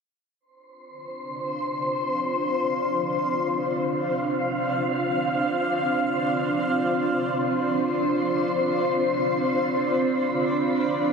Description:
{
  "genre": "drum and bass",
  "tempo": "free time",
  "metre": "none",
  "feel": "none",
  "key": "D dorian",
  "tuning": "A4 = 440 Hz",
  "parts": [
    { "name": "granular cloud pad", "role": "sustained chords", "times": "1.1-11.1 s", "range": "C4 to F5", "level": "-23 LUFS", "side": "equal", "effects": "built-in reverb" },
    { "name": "wind-like tuned noise texture", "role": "texture", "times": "0.9-11.1 s", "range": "C5 to C6", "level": "-29 LUFS", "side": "right 1 dB", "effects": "built-in reverb" }
  ],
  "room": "wet echo chamber reverb, RT60 2.0 s",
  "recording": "dense, heavily limited modern master",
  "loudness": "-22 LUFS",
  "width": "side -5 dB against mid",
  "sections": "0.4-11.1 A section",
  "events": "none",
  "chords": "0.4 Dm7"
}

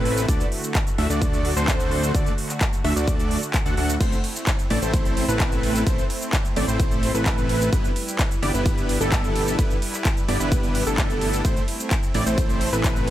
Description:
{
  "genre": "EDM, festival progressive house",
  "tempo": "129 BPM",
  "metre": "4/4",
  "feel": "straight",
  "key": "A dorian",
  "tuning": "A4 = 439 Hz",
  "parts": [
    { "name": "supersaw pad", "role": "sustained chords", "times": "0.0-13.1 s", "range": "D3 to B4", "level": "-32 LUFS", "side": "equal", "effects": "sidechain pumping" },
    { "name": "wide unison lead", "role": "arpeggios", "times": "0.0-13.1 s", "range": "A4 to F#5", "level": "-29 LUFS", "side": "equal", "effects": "sidechain pumping, digital delay" },
    { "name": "dense compressed supersaw", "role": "riff", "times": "0.0-13.1 s", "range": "A3 to F#5", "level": "-27 LUFS", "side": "right 1 dB", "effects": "cassette tape, sidechain pumping, digital delay" },
    { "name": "fat analog bass", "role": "bass", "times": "0.0-13.1 s", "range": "G1 to D2", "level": "-26 LUFS", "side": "equal", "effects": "sidechain pumping" },
    { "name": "big-room dance drum kit", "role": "drums", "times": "0.1-13.1 s", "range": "crash cymbal, handclaps, hi-hat, ride cymbal, shaker", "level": "-29 LUFS", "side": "equal", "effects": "small room ambience" },
    { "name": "electronic kick drum", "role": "drums", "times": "0.3-12.9 s", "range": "none", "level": "-22 LUFS", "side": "equal", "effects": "small room ambience" }
  ],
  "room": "digital ambience",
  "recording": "none",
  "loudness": "-20 LUFS",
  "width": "side -13 dB against mid",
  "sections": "0.0-13.1 A section",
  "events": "none",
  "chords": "0.3 D; 4.0 Am; 7.7 G6; 11.4 Am"
}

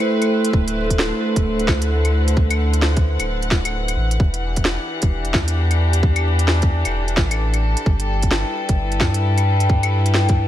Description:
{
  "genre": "future garage",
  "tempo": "131 BPM",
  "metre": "4/4",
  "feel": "swing 62% on 16ths",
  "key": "E minor",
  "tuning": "A4 = 440 Hz",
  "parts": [
    { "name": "dark studio string section", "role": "sustained chords", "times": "0.0-10.5 s", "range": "D3 to G5", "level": "-22 LUFS", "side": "left 1 dB", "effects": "vintage 12-bit sampler grit, sidechain pumping" },
    { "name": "organic electronic drum kit", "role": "drums", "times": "0.2-10.4 s", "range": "claves, hi-hat, snare drum", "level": "-24 LUFS", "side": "equal", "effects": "none" },
    { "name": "warm sub bass", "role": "bass", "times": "0.5-10.5 s", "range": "D1 to G2", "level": "-19 LUFS", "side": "equal", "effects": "tube saturation, sidechain pumping" },
    { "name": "electronic kick drum", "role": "drums", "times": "0.5-10.4 s", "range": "none", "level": "-18 LUFS", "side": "equal", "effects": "none" }
  ],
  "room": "light reverb, digital ambience",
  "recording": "vinyl crackle",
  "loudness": "-16 LUFS",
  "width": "side -12 dB against mid",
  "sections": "0.0-10.5 A section",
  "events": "break 0.0-0.5",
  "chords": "0.0 Am9; 0.5 D13; 4.2 Em11; 7.9 G69"
}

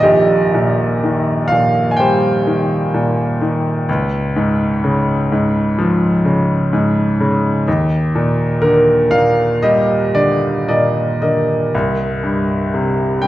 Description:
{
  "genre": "classical, lyrical solo piano",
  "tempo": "54-64 BPM",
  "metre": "4/4",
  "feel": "rubato",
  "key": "Eb major",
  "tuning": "A4 = 443 Hz",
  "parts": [
    { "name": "bright baby grand piano", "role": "solo", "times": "0.0-13.3 s", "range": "Bb1 to Ab5", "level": "-13 LUFS", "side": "equal", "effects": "none" }
  ],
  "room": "wet recital hall reverb, RT60 1.4 s",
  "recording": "recorded in a church or concert hall",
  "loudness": "-13 LUFS",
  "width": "side -15 dB against mid",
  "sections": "0.0-11.7 A section; 11.7-13.3 B section",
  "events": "none",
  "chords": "0.0 Eb6; 3.9 Db; 7.7 Ebmaj7; 11.7 Cm7"
}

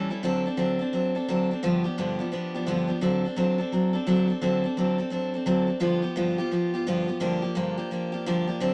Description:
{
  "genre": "rock",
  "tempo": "172 BPM",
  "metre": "4/4",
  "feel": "swing 63% on 8ths",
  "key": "unclear",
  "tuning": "A4 = 438 Hz",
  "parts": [
    { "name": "picked steel-string acoustic guitar", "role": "solo", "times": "0.0-8.7 s", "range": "G2 to A4", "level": "-26 LUFS", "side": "equal", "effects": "none" }
  ],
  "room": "moderate studio reverb, RT60 0.9 s",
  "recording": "none",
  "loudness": "-26 LUFS",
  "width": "mono",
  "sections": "0.2-8.7 A section",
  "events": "none",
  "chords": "0.2 D7; 1.6 G7; 3.0 D7; 5.8 G7; 7.2 Gm7"
}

